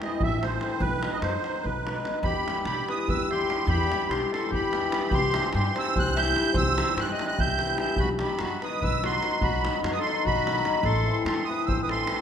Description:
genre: balkan folk, Balkan wedding band.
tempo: 293 BPM (eighths).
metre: 7/8.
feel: straight.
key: unclear.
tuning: A4 = 440 Hz.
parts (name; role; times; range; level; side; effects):
musette accordion; melody; 0.0-12.2 s; B4 to G6; -29 LUFS; right 5 dB; none.
cimbalom; accompaniment; 0.0-12.2 s; D#3 to E4; -30 LUFS; left 3 dB; none.
davul; percussion; 0.0-12.2 s; none; -31 LUFS; right 1 dB; none.
upright bass; bass; 0.2-12.0 s; A1 to G2; -31 LUFS; equal; none.
accordion; second line; 2.3-12.2 s; F#4 to E5; -31 LUFS; left 5 dB; none.
room: moderate recital hall reverb, RT60 1.4 s.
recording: minimal, uncompressed stereo recording.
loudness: -23 LUFS.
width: side -8 dB against mid.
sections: 0.0-2.2 A section; 2.2-12.2 A section.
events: none.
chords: 0.0 Am; 0.8 B; 2.2 Em; 5.1 C; 8.0 B; 10.8 Am.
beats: 0.19 0.39 0.60 | 0.81 1.01 1.22 1.42 1.63 1.83 2.04 | 2.25 2.45 2.66 2.86 3.07 3.27 3.48 | 3.68 3.89 4.09 4.30 4.50 4.71 4.91 | 5.12 5.32 5.53 5.73 5.94 6.14 6.34 | 6.55 6.75 6.96 7.16 7.37 7.57 7.78 | 7.98 8.19 8.39 8.60 8.80 9.01 9.21 | 9.41 9.62 9.82 10.03 10.23 10.44 10.64 | 10.85 11.05 11.25 11.46 11.66 11.87 12.07.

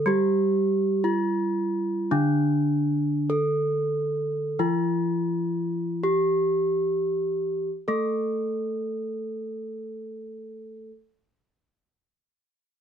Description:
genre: gamelan.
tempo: 34-64 BPM.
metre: 4/4.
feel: straight.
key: unclear.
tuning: A4 = 441 Hz.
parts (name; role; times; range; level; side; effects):
gamelan-type bronze metallophone; melody; 0.0-10.9 s; D4 to A4; -25 LUFS; right 1 dB; none.
gamelan-type bronze metallophone; accompaniment; 0.0-10.9 s; D3 to A3; -29 LUFS; left 2 dB; none.
room: light reverb.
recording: close, detailed microphones.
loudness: -23 LUFS.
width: side -8 dB against mid.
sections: 0.0-7.7 A section; 7.7-12.8 B section.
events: slowing down 0.0-7.7.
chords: none.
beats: 0.06 1.05 | 2.12 3.29 4.59 6.04 | 7.69 9.45.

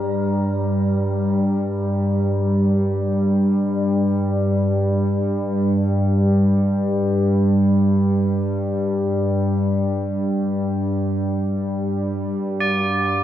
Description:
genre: world meditative, free-time meditation music.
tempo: free time.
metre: none.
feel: none.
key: G minor pentatonic.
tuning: A4 = 440 Hz.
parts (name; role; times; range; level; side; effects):
warbly tape-like pad; drone; 0.0-13.2 s; G2 to G3; -18 LUFS; equal; chorus, built-in reverb.
tubular bells; texture; 0.0-4.1, 12.6-13.2 s; Bb4 to D5; -26 LUFS; right 1 dB; shimmer reverb.
room: wet huge ambient reverb, RT60 6.0 s.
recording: worn, warbling old tape, cassette tape, warbly pitch drift.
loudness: -18 LUFS.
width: side -11 dB against mid.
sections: 0.0-11.7 A section; 11.7-13.2 A section.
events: none.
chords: none.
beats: free time.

